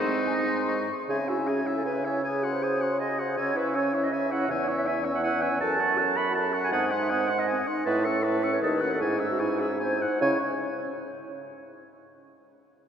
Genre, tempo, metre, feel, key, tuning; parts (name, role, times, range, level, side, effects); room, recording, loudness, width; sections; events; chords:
quick classical-period movement for wind quintet; 144-163 BPM; 3/4; rubato; C# minor; A4 = 440 Hz
mellow hollow concert flute; melody; 0.0-10.4 s; E5 to G#6; -34 LUFS; left 3 dB
bright oboe; second line; 0.0-10.4 s; D#4 to C#6; -33 LUFS; left 2 dB
mellow French horn; accompaniment; 0.0-10.4 s; G#3 to A4; -34 LUFS; left 1 dB
mellow clarinet; accompaniment; 0.0-10.4 s; B#3 to B5; -29 LUFS; right 3 dB
mellow bassoon; bass; 0.0-10.4 s; D#2 to C#3; -29 LUFS; right 1 dB
wet cathedral reverb, RT60 4.2 s; -24 LUFS; side -8 dB against mid
0.0-1.1 A section; 1.1-10.2 B section; 10.2-11.4 C section
0.0 G#; 1.1 C#m; 2.2 G#7/C#; 3.4 C#m; 4.5 C#m/E; 5.6 F#m; 6.7 G#7; 7.9 A; 8.6 D#m7b5; 9.0 C#m/G#; 9.8 G#7; 10.2 C#m